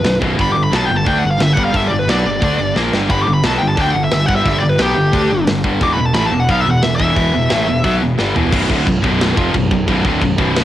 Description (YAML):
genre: heavy metal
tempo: 177 BPM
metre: 4/4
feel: straight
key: unclear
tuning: A4 = 440 Hz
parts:
  - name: high-gain lead guitar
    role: melody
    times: 0.0-7.9 s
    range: G4 to D6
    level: -18 LUFS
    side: left 1 dB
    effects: distortion, cassette tape, analog delay
  - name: high-gain distorted guitar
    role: riff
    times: 0.0-10.6 s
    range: B1 to D4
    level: -20 LUFS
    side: right 6 dB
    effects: distortion, cassette tape
  - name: fuzz picked electric bass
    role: bass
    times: 0.0-10.6 s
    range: B0 to D2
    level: -20 LUFS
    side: equal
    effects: overdrive
  - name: tight metal drum kit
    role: drums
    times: 0.0-10.6 s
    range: crash cymbal, hi-hat, kick drum, snare drum, toms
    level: -20 LUFS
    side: equal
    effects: cassette tape
  - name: high-gain distorted guitar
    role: riff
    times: 0.1-10.6 s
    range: B1 to D4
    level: -20 LUFS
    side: left 6 dB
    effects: distortion, cassette tape
  - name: heavy high-gain guitar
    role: riff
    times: 8.5-10.6 s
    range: B1 to E#3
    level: -24 LUFS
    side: equal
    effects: none
room: studio reverb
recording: home recording on cassette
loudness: -13 LUFS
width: side -13 dB against mid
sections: 0.0-8.5 A section; 8.5-10.6 B section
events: lead electric guitar solo 0.0-8.5; drum fill 2.8-3.1, 8.2-8.5; half time 8.5-10.6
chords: 0.4 G5; 5.8 E5; 8.5 Bm